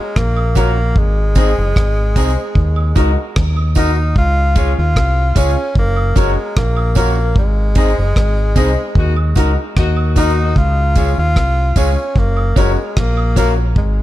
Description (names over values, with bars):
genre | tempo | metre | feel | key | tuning
roots reggae | 75 BPM | 4/4 | straight | unclear | A4 = 439 Hz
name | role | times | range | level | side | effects
breathy tenor saxophone | melody | 0.0-14.0 s | Ab3 to F4 | -21 LUFS | equal | tape echo
deep dub fingered electric bass | bass | 0.2-14.0 s | Gb1 to Eb2 | -15 LUFS | equal | none
deep reggae drum kit | drums | 0.2-14.0 s | hi-hat, kick drum, rim click | -15 LUFS | equal | none
woodblock and tambourine | percussion | 0.4-13.6 s | none | -30 LUFS | right 6 dB | none
electric guitar through a small old amp | accompaniment | 0.6-13.5 s | Ab3 to Bb4 | -24 LUFS | right 2 dB | tape echo
clear baby grand piano | stabs | 0.6-13.7 s | F4 to Eb5 | -25 LUFS | left 7 dB | none
warm horn section | second line | 9.0-10.5 s | Bb3 to Gb4 | -24 LUFS | left 4 dB | tape echo
room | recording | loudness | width
little or no reverb | dark, warm production | -12 LUFS | side -14 dB against mid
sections
0.0-14.0 A section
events
band accent 7.4-10.6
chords
0.0 Gb; 1.0 Ab; 2.6 Ebm; 4.2 Db; 5.8 Gb; 7.4 Ab; 9.0 Ebm; 10.6 Db; 12.2 Gb